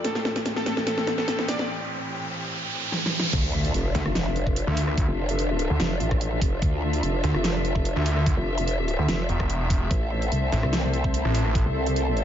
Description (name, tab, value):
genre	heavy wobble dubstep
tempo	146 BPM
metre	4/4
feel	half-time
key	D minor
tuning	A4 = 444 Hz
part	soft supersaw	melody	0.0-1.6 s	A4 to D5	-31 LUFS	left 1 dB	cassette tape, dub echo
part	muted studio string section	sustained chords	0.0-12.2 s	A2 to E5	-32 LUFS	equal	sidechain pumping
part	dubstep drum kit	drums	0.0-12.2 s	crash cymbal, hi-hat, rim click, snare drum	-29 LUFS	equal	overdrive
part	riser and impact	sound effects	0.0-5.0 s	none	-31 LUFS	right 1 dB	none
part	warbly tape-like pad	texture	0.0-12.2 s	C4 to G5	-34 LUFS	left 2 dB	chorus, built-in reverb, sidechain pumping
part	growl bass	bass	3.3-12.2 s	F1 to D2	-26 LUFS	equal	distortion, chorus, overdrive
part	electronic kick drum	drums	3.3-11.6 s	none	-24 LUFS	equal	overdrive
part	snarling distorted saw bass	bass	3.9-11.6 s	E1 to D2	-24 LUFS	equal	distortion, overdrive
room	light reverb, digital ambience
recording	nothing above 7.5 kHz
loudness	-22 LUFS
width	side -10 dB against mid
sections	0.0-3.3 A section; 3.3-12.2 B section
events	build-up 0.0-3.3; drum fill 0.0-1.7, 2.9-3.3; riser 0.0-3.3; break 1.7-3.3; drop 3.3-12.2; impact 3.3-5.0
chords	0.0 Am7; 3.3 Dmadd9; 9.9 Am